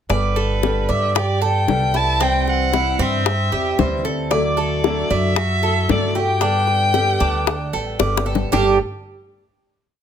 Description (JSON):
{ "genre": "latin, Cuban son and guajira", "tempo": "114 BPM", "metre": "4/4", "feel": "straight", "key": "G major", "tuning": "A4 = 441 Hz", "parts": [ { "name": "warm violin", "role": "melody", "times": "0.1-8.0 s", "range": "B4 to A5", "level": "-22 LUFS", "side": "left 2 dB", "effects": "none" }, { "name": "fingerpicked steel-string acoustic guitar", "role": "accompaniment", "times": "0.1-8.7 s", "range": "G2 to G4", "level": "-25 LUFS", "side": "left 3 dB", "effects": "none" }, { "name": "Cuban tres", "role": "arpeggios", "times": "0.1-8.8 s", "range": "G3 to D5", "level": "-22 LUFS", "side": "right 5 dB", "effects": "none" }, { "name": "upright bass", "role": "bass", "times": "0.1-8.8 s", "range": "G1 to G2", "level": "-22 LUFS", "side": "right 1 dB", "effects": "none" }, { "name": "bongos", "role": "percussion", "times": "0.1-8.7 s", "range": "none", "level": "-22 LUFS", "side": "left 9 dB", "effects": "none" } ], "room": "light reverb", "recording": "close, detailed microphones", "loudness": "-16 LUFS", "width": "side -8 dB against mid", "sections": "0.1-8.5 A section; 8.5-10.0 final chord", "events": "drum fill 8.0-8.5", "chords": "0.1 Gadd9; 2.2 C; 4.3 Dadd9; 6.4 Gadd9" }